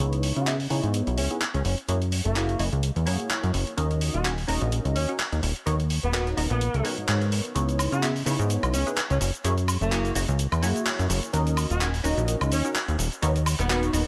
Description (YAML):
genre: filtered disco house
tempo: 127 BPM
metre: 4/4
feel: swing 56% on 16ths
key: C# dorian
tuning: A4 = 437 Hz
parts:
  - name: funky polysynth comp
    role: accompaniment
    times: 0.0-14.0 s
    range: A#3 to G#5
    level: -32 LUFS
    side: equal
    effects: chorus, phaser, low-pass filter
  - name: plucky analog bass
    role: bass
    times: 0.0-14.0 s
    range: D#1 to C#3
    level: -27 LUFS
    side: equal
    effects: low-pass filter
  - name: dusty soul sampler-style drum kit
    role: drums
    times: 0.1-14.0 s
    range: handclaps, hi-hat, shaker, woodblock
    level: -32 LUFS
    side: equal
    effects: none
  - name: warm horn section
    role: melody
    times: 0.4-13.8 s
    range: A#3 to F#4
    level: -35 LUFS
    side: equal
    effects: low-pass filter, tape echo
room: light reverb, digital ambience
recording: lossy compression artefacts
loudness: -25 LUFS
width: mono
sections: 0.0-14.1 A section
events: build-up 0.0-14.1; filter sweep on horn section 0.0-14.1; filter sweep 0.0-14.1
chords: 0.0 C#m9; 1.6 F#9; 3.8 D#m7; 5.7 Bmaj9/D#; 7.6 C#m9; 9.2 F#9; 11.3 D#m7; 13.2 Bmaj9/D#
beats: | 0.00 0.47 0.94 1.41 | 1.89 2.36 2.83 3.30 | 3.78 4.25 4.72 5.19 | 5.67 6.14 6.61 7.08 | 7.55 8.03 8.50 8.97 | 9.45 9.92 10.39 10.86 | 11.34 11.81 12.28 12.75 | 13.22 13.70